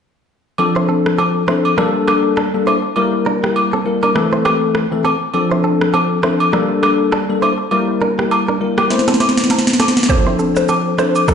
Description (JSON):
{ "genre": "afrobeats", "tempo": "101 BPM", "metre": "4/4", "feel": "swing 58% on 16ths", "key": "D minor", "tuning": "A4 = 440 Hz", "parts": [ { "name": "bell-like tine electric piano", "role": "accompaniment", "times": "0.6-11.3 s", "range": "E3 to C5", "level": "-16 LUFS", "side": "left 2 dB", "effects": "analog chorus" }, { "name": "agogo bells and woodblock", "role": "percussion", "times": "0.6-11.3 s", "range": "none", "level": "-20 LUFS", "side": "equal", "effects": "none" }, { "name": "direct-recorded clean electric guitar", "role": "riff", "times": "0.8-11.3 s", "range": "Bb3 to C5", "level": "-22 LUFS", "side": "right 3 dB", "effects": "ping-pong delay" }, { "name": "afro-pop drum kit", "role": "drums", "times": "1.1-11.3 s", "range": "kick drum, rim click, shaker, snare drum", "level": "-19 LUFS", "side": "right 1 dB", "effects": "none" }, { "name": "hollow square pluck", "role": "melody", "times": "10.1-11.3 s", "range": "A4 to C5", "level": "-20 LUFS", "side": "equal", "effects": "chorus, ping-pong delay" } ], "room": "moderate plate reverb, RT60 1.9 s", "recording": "played on a big sound system in a bare room, stone room reverb, nothing above 10.9 kHz", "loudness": "-13 LUFS", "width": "side -7 dB against mid", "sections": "0.6-10.1 A section; 10.1-11.3 B section", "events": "drum fill 8.9-10.1", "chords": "0.6 Dm7; 1.8 Gmadd9; 4.2 Am; 5.3 Dm7; 6.5 Gmadd9; 7.7 Edim; 8.9 Am; 10.1 Dm7" }